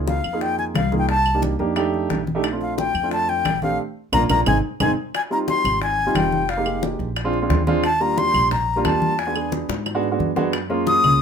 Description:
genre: Afro-Cuban jazz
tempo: 178 BPM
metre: 4/4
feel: straight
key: unclear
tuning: A4 = 440 Hz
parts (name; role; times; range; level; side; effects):
- warm concert grand piano; accompaniment; 0.0-11.2 s; G3 to Ab4; -23 LUFS; right 3 dB; none
- upright bass; bass; 0.0-11.2 s; F1 to G#2; -26 LUFS; equal; none
- breathy bright concert flute; melody; 0.1-11.2 s; F5 to Eb6; -20 LUFS; left 2 dB; none
- bongos; percussion; 0.1-11.0 s; none; -29 LUFS; left 4 dB; none
- congas; percussion; 0.1-11.2 s; none; -28 LUFS; left 1 dB; none
- claves; percussion; 0.2-11.2 s; none; -30 LUFS; right 4 dB; none
room: moderate studio reverb, RT60 0.6 s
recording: minimal, uncompressed stereo recording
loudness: -18 LUFS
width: side -7 dB against mid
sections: 0.0-5.1 A section; 5.1-11.2 B section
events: drum fill 3.8-5.1, 9.7-10.5; band accent 3.8-5.1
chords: 0.0 Db69; 1.1 Cm9; 1.8 F13; 2.4 Bbmaj9; 4.5 Ab; 5.1 Fm11; 7.2 Bb9; 7.8 Ebmaj9; 9.2 E9; 10.5 Gbmaj7

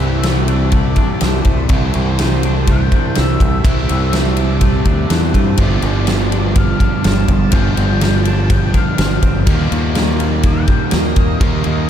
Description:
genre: rock, shoegaze and dream pop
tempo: 124 BPM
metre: 4/4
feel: straight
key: unclear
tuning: A4 = 440 Hz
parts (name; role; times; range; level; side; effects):
- octave-fuzz lead guitar; melody; 0.0-11.9 s; C5 to A5; -26 LUFS; left 2 dB; distortion, diffuse ambient delay
- clean electric guitar; arpeggios; 0.0-11.9 s; E3 to D4; -28 LUFS; left 5 dB; wide subtle chorus, diffuse ambient delay
- overdriven semi-hollow guitar; riff; 0.0-11.9 s; G2 to G4; -22 LUFS; left 7 dB; lush chorus
- overdriven semi-hollow guitar; riff; 0.0-11.9 s; G2 to F4; -20 LUFS; right 8 dB; reverse reverb
- growling fingered electric bass; bass; 0.0-11.9 s; G1 to G2; -17 LUFS; equal; overdrive
- huge arena drum kit; drums; 0.2-11.8 s; kick drum, ride cymbal, snare drum; -16 LUFS; equal; none
room: moderate huge ambient reverb, RT60 7.5 s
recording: dreamy mix soaked in reverb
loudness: -12 LUFS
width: side -9 dB against mid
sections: 0.0-11.9 A section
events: none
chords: 0.0 C69; 5.6 G7(no3); 9.5 Ebmaj7

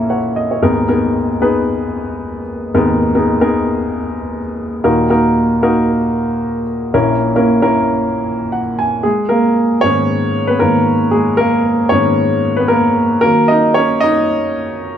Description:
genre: pop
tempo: 114 BPM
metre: 4/4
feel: swing 56% on 16ths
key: G# minor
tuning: A4 = 440 Hz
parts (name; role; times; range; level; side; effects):
- warm baby grand piano; solo; 0.0-15.0 s; G#1 to G#5; -12 LUFS; equal; none
room: moderate large studio reverb, RT60 1.2 s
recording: dark, warm production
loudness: -12 LUFS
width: side -9 dB against mid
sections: 0.0-9.0 A section; 9.0-15.0 B section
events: grand piano fill 0.0-0.6, 8.3-9.0; grand piano solo 9.0-15.0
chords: 0.0 A#dim; 0.6 G#madd9; 4.8 D#m; 6.9 A#dim; 9.0 G#madd9; 13.2 D#m

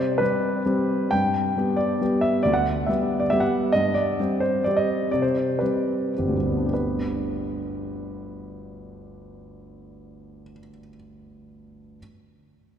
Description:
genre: classical, piano waltz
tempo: 96-146 BPM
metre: 3/4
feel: rubato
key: G major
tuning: A4 = 440 Hz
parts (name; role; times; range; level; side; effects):
- warm grand piano; solo; 0.0-12.0 s; G1 to G5; -22 LUFS; equal; none
room: wet church reverb, RT60 3.8 s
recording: recorded in a church or concert hall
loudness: -21 LUFS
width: side -8 dB against mid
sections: 0.0-6.7 A section; 6.7-9.9 B section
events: slowing down 3.1-6.7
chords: 0.0 C5; 1.1 G; 3.7 C5/G; 6.7 G

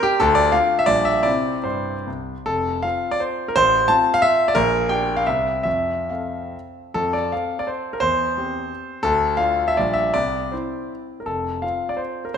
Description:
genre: classical, romantic triple-time dance for piano with dotted rhythms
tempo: 129-194 BPM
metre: 3/4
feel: rubato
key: F major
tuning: A4 = 440 Hz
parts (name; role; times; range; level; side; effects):
- warm concert grand piano; solo; 0.0-12.4 s; F1 to A5; -18 LUFS; left 1 dB; none
room: wet scoring stage reverb, RT60 1.9 s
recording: minimal, uncompressed stereo recording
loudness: -18 LUFS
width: side -7 dB against mid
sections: 0.0-6.9 A section; 6.9-12.4 B section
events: none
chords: 0.2 Dm; 0.9 Gm7/Bb; 1.3 C; 2.5 F; 3.6 F/A; 4.6 Gm/Bb; 5.3 C; 5.7 F; 8.0 C/E; 9.0 Dm; 9.8 Gm7/Bb; 10.1 C; 11.3 F

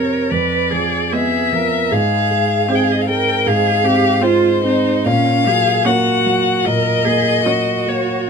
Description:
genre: classical, slow romantic movement for piano quartet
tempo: 69-80 BPM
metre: 4/4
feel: rubato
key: unclear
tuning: A4 = 440 Hz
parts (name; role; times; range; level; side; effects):
- rich violin; melody; 0.0-8.3 s; C5 to G5; -18 LUFS; left 9 dB; none
- rich cello; second line; 0.0-8.3 s; Db4 to Cb5; -19 LUFS; right 7 dB; none
- warm grand piano; accompaniment; 0.0-8.3 s; F2 to C4; -18 LUFS; right 1 dB; none
- warm viola; accompaniment; 0.0-8.1 s; Ab3 to Db4; -26 LUFS; right 4 dB; none
room: light reverb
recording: minimal, uncompressed stereo recording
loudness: -13 LUFS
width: side -6 dB against mid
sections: 0.0-8.3 A section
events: none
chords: 0.3 Fdim7; 1.9 Fm/Ab; 5.1 Gb/Bb

